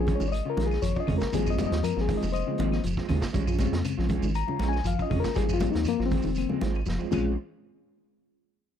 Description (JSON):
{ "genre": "afrobeat", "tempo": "119 BPM", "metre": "4/4", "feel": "swing 53% on 16ths", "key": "Bb dorian", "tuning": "A4 = 441 Hz", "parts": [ { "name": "reed electric piano", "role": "accompaniment", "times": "0.0-7.4 s", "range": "Db3 to Bb5", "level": "-30 LUFS", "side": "left 12 dB", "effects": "spring reverb" }, { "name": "electric guitar at the edge of break-up", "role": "arpeggios", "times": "0.0-7.3 s", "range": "Bb2 to G3", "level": "-34 LUFS", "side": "left 6 dB", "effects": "none" }, { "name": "electric guitar at the edge of break-up", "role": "stabs", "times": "0.0-7.3 s", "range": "Eb3 to F4", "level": "-33 LUFS", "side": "right 11 dB", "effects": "harmonic tremolo" }, { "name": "round analog bass", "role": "bass", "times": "0.0-7.4 s", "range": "F1 to F2", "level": "-29 LUFS", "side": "right 1 dB", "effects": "none" }, { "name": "vintage drum kit", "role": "drums", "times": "0.1-7.2 s", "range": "crash cymbal, hi-hat, kick drum, snare drum", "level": "-34 LUFS", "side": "right 1 dB", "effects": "none" }, { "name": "congas", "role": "percussion", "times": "0.1-7.2 s", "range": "none", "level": "-34 LUFS", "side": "right 3 dB", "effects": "none" }, { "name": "shekere", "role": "percussion", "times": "0.1-7.2 s", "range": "none", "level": "-38 LUFS", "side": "right 4 dB", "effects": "none" }, { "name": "claves", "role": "percussion", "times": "0.3-7.3 s", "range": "none", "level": "-47 LUFS", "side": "left 15 dB", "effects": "none" } ], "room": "small room ambience", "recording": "dry, close 1970s-style studio recording", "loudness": "-24 LUFS", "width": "side -9 dB against mid", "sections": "0.0-7.4 A section; 7.4-8.8 B section", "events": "reed electric piano solo 0.0-7.4; drum fill 6.9-7.4", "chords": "0.0 Bbm7; 1.3 Ab6; 3.3 Bbm7; 5.4 Ab6; 7.1 Bbm7; 7.4 N.C.", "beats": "0.32 0.82 | 1.32 1.83 2.33 2.84 | 3.34 3.85 4.35 4.85 | 5.36 5.86 6.36 6.87" }